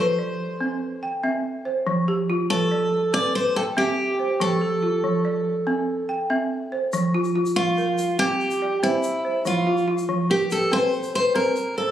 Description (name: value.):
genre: west african traditional, West African string and xylophone music.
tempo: 95 BPM (dotted quarters).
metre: 12/8.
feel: straight.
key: F major.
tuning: A4 = 440 Hz.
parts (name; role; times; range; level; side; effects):
picked steel-string acoustic guitar; melody; 0.0-11.9 s; E4 to D5; -22 LUFS; equal; none.
balafon; arpeggios; 0.0-11.9 s; F3 to G5; -24 LUFS; right 1 dB; none.
egg shaker; percussion; 6.9-11.7 s; none; -40 LUFS; left 3 dB; none.
room: moderate plate reverb, RT60 2.8 s.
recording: recorded on a phone in the room, club reverb.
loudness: -20 LUFS.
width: side -11 dB against mid.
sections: 0.0-6.9 A section; 6.9-11.9 B section.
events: steel-string acoustic guitar solo 6.9-11.9.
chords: 0.0 F5; 0.6 C; 1.9 F; 3.1 C; 4.4 F; 5.7 C; 6.9 F5; 8.2 C; 9.5 F5; 10.7 C5.